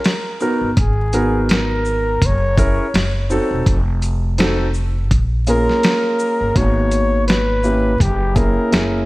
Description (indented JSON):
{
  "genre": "hip hop, jazz-hop",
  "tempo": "83 BPM",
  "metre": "4/4",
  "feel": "swing 57% on 16ths",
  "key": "G# dorian",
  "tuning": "A4 = 440 Hz",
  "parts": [
    { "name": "breathy flugelhorn", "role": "melody", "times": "0.0-9.1 s", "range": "G4 to C#5", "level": "-20 LUFS", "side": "equal", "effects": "tape echo" },
    { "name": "dusty soul sampler-style drum kit", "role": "drums", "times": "0.0-8.9 s", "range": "hi-hat, kick drum, shaker, snare drum", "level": "-18 LUFS", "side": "equal", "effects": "overdrive, vintage 12-bit sampler grit" },
    { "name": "warm baby grand piano", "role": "accompaniment", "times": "0.4-9.1 s", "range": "A#3 to A#4", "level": "-20 LUFS", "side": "equal", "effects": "none" },
    { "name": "upright bass", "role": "bass", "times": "0.6-9.1 s", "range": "E1 to A#1", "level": "-20 LUFS", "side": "equal", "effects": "none" }
  ],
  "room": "light reverb, small room ambience",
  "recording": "vinyl crackle",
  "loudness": "-14 LUFS",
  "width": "side -20 dB against mid",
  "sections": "0.0-9.1 A section",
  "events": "none",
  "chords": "0.0 N.C.; 0.8 G#m9; 2.2 F#7; 2.9 F#5; 3.7 F7b9; 5.1 A#m7; 6.6 G#m9; 8.0 F#7b9"
}